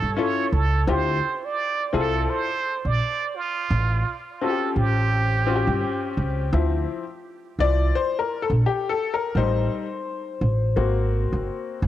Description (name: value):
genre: hip hop, jazz-hop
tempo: 85 BPM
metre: 4/4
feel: swing 58% on 16ths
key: D minor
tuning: A4 = 440 Hz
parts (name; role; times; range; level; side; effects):
- trumpet with plunger mute; melody; 0.0-6.2 s; F4 to D5; -26 LUFS; right 5 dB; cassette tape, tape echo
- upright bass; bass; 0.0-11.9 s; F#1 to D2; -22 LUFS; right 1 dB; none
- bright upright piano; accompaniment; 0.2-11.8 s; F3 to D5; -25 LUFS; left 6 dB; cassette tape
room: light reverb, small room ambience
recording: home recording on cassette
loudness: -21 LUFS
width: side -12 dB against mid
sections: 0.0-6.5 A section; 6.5-11.9 B section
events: upright piano solo 6.5-11.9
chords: 0.0 A7b13; 0.9 Dm9; 3.7 A7alt; 6.5 Dm9; 9.4 Am7b5; 10.8 G#9